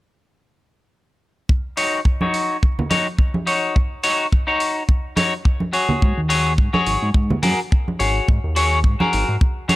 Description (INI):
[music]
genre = nu-disco, nu disco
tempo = 106 BPM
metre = 4/4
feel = swing 55% on 16ths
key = Eb minor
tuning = A4 = 441 Hz
[part]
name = kick drum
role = drums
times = 1.5-9.5 s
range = none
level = -17 LUFS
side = equal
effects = none
[part]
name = clean electric guitar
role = riff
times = 1.8-9.8 s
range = Eb4 to Db5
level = -20 LUFS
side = left 2 dB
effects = wide subtle chorus, low-pass filter
[part]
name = electronic hi-hat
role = drums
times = 1.8-9.8 s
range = none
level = -29 LUFS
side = equal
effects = overdrive
[part]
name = congas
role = percussion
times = 2.2-9.8 s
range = none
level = -23 LUFS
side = right 1 dB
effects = none
[part]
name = fat analog bass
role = bass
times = 6.0-9.4 s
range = Ab1 to Ab2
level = -21 LUFS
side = equal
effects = sidechain pumping
[sound]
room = small room ambience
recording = dry, gritty hardware recording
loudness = -16 LUFS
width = side -17 dB against mid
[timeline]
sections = 1.5-9.8 A section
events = none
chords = 1.5 Ebm7; 5.7 Ab7sus4